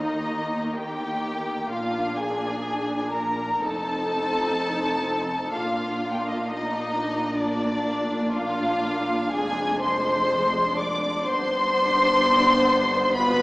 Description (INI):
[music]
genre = classical, slow romantic movement for string orchestra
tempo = 62 BPM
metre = 4/4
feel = rubato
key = unclear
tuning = A4 = 440 Hz
[part]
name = rich symphonic violin section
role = melody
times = 0.0-13.4 s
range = D5 to D6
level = -26 LUFS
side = left 1 dB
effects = none
[part]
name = dark studio violin section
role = second line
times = 0.0-13.4 s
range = D4 to D5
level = -26 LUFS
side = equal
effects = none
[part]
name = warm symphonic viola section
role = accompaniment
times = 0.0-13.4 s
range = Ab3 to F4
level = -28 LUFS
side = equal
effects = none
[part]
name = rich symphonic double bass section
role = bass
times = 0.0-13.4 s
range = F1 to Eb2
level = -38 LUFS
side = equal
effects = none
[part]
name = warm symphonic cello section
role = bass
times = 0.0-13.4 s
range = F2 to Eb3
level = -35 LUFS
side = equal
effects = none
[sound]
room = wet concert hall reverb, RT60 2.2 s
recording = small speaker sound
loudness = -22 LUFS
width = side -22 dB against mid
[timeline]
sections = 0.0-13.4 A section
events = none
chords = 0.0 Eb; 1.7 Bb; 3.6 F7; 5.5 Bb; 9.3 Ddim/F; 11.3 G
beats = 0.77 | 1.72 2.66 3.63 4.59 | 5.54 6.47 7.40 8.34 | 9.34 10.31 11.27 12.22 | 13.19